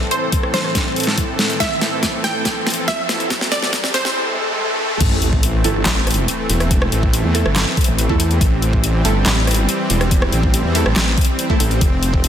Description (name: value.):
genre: heavy wobble dubstep.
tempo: 141 BPM.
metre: 4/4.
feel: half-time.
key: A minor.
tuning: A4 = 440 Hz.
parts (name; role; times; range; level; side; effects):
wide unison pluck; melody; 0.0-4.2 s; C5 to G5; -23 LUFS; right 1 dB; dub echo.
supersaw pad; sustained chords; 0.0-12.3 s; A2 to A4; -23 LUFS; equal; sidechain pumping.
riser, swell and sub drop; sound effects; 1.2-6.7 s; none; -25 LUFS; equal; none.
dubstep drum kit; drums; 0.1-12.3 s; crash cymbal, handclaps, hi-hat, rim click, snare drum; -20 LUFS; left 1 dB; overdrive, studio reverb.
electronic kick drum; drums; 0.3-12.2 s; none; -18 LUFS; equal; overdrive, studio reverb.
wobble bass; bass; 5.0-12.3 s; E1 to E2; -18 LUFS; equal; chorus, overdrive.
orchestra-hit-like synth stab; stabs; 5.6-11.6 s; A3 to A4; -25 LUFS; right 3 dB; built-in reverb, dub echo.
room: light reverb, digital ambience.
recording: dense, heavily limited modern master, high-pass filter.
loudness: -15 LUFS.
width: side -9 dB against mid.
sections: 0.0-5.0 A section; 5.0-12.3 B section.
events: build-up 0.0-5.0; drum fill 0.0-4.2; riser 1.2-5.0; swell 4.2-5.0; drop 5.0-12.3; impact 5.0-6.7.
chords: 0.0 Am.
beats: 0.33 0.75 1.18 | 1.60 2.03 2.45 2.88 | 3.30 3.73 4.16 4.58 | 5.01 5.43 5.86 6.28 | 6.71 7.13 7.56 7.99 | 8.41 8.84 9.26 9.69 | 10.11 10.54 10.96 11.39 | 11.81 12.24.